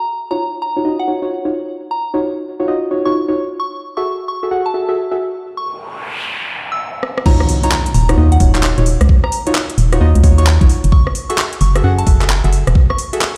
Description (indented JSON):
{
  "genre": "UK garage, two-step garage",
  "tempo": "131 BPM",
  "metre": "4/4",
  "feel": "swing 64% on 16ths",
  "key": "Eb minor",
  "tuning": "A4 = 440 Hz",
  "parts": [
    { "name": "soft synth bell", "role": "melody", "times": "0.0-13.0 s", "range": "Gb5 to Fb6", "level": "-26 LUFS", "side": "equal", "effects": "chorus, digital delay" },
    { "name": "deep mellow chord stab", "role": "stabs", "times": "0.3-13.2 s", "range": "Eb4 to Gb5", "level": "-22 LUFS", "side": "equal", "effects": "chorus, digital delay" },
    { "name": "noise sweep and impact", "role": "sound effects", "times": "5.7-9.1 s", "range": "none", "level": "-24 LUFS", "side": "equal", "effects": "none" },
    { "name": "garage drum kit", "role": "drums", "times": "7.0-13.3 s", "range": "crash cymbal, handclaps, hi-hat, rim click", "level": "-23 LUFS", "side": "equal", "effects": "none" },
    { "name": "electronic kick drum", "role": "drums", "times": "7.3-12.9 s", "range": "none", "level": "-13 LUFS", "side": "equal", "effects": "none" },
    { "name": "organ-like FM bass", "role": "bass", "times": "7.9-12.7 s", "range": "Eb1 to Gb2", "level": "-14 LUFS", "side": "equal", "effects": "none" }
  ],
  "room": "light reverb",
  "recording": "played on a big sound system in a bare room, stone room reverb",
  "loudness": "-15 LUFS",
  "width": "mono",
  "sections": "0.0-7.3 A section; 7.3-13.4 B section",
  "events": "filter sweep on synth stab 0.0-7.3; break 5.4-7.3; noise sweep 5.7-7.3; drum fill 7.0; drop 7.3-13.4; impact 7.3-9.1",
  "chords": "0.0 Ebm9; 3.4 Gbm9; 7.3 Ebm9; 10.7 Gbm9"
}